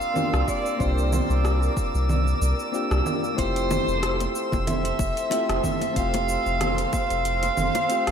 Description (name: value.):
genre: sunset chillout.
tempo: 93 BPM.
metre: 4/4.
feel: swing 54% on 16ths.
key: F major.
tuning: A4 = 439 Hz.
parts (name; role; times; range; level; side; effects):
mellow soprano saxophone; melody; 0.0-8.1 s; C5 to F5; -26 LUFS; right 1 dB; analog delay.
soft electric-piano-like synth keys; accompaniment; 0.0-8.1 s; A3 to G4; -30 LUFS; left 1 dB; chorus, auto-pan, diffuse ambient delay.
airy breathy pad; sustained chords; 0.0-8.1 s; A4 to D6; -32 LUFS; equal; chorus.
deep house drum kit; drums; 0.0-8.1 s; cabasa, congas, hi-hat, rim click; -30 LUFS; right 1 dB; overdrive.
drifting glass-harmonics texture; texture; 0.0-8.1 s; E6; -34 LUFS; right 3 dB; chorus, built-in reverb.
round analog bass; bass; 0.3-8.1 s; F1 to C2; -25 LUFS; equal; none.
electronic kick drum; drums; 0.5-7.1 s; none; -29 LUFS; equal; overdrive.
bongos; percussion; 3.4-7.9 s; none; -36 LUFS; left 7 dB; none.
room: moderate lush hall reverb, RT60 1.8 s.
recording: dreamy mix soaked in reverb.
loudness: -21 LUFS.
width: side -8 dB against mid.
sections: 0.0-8.1 A section.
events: none.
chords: 0.0 C9sus4; 3.4 Fmaj7.